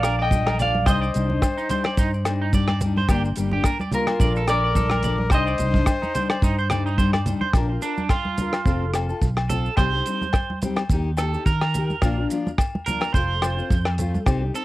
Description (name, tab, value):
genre	highlife guitar band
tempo	107 BPM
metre	4/4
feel	swing 55% on 16ths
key	Bb major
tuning	A4 = 440 Hz
part	clean electric guitar	melody	0.0-7.0 s	Bb4 to G5	-26 LUFS	equal	cassette tape
part	warm trumpet	second line	0.0-7.0 s	F4 to Eb5	-29 LUFS	left 2 dB	none
part	fingerpicked steel-string acoustic guitar	accompaniment	0.0-14.6 s	F3 to Bb4	-28 LUFS	left 4 dB	none
part	electric guitar at the edge of break-up	arpeggios	0.0-14.6 s	D4 to D5	-28 LUFS	right 5 dB	tape echo
part	fingered electric bass	bass	0.0-14.5 s	F1 to Eb3	-24 LUFS	equal	none
part	damped 70s drum kit	drums	0.0-14.6 s	hi-hat, kick drum, rim click	-22 LUFS	equal	none
part	agogo bells	percussion	0.0-14.4 s	none	-31 LUFS	left 4 dB	none
part	maracas	percussion	0.0-14.6 s	none	-42 LUFS	right 4 dB	none
part	congas	percussion	0.3-14.3 s	none	-29 LUFS	right 1 dB	none
room	little or no reverb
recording	home recording on cassette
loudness	-19 LUFS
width	side -16 dB against mid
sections	0.0-7.5 A section; 7.5-14.6 B section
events	clean electric guitar solo 7.5-14.6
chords	0.0 Bbmaj7; 0.9 Cmadd9; 3.1 Gm; 4.2 Bbmaj7; 5.3 Cmadd9; 7.5 Bb; 8.7 F; 9.8 Cm; 10.9 Eb; 12.0 Bb; 13.1 F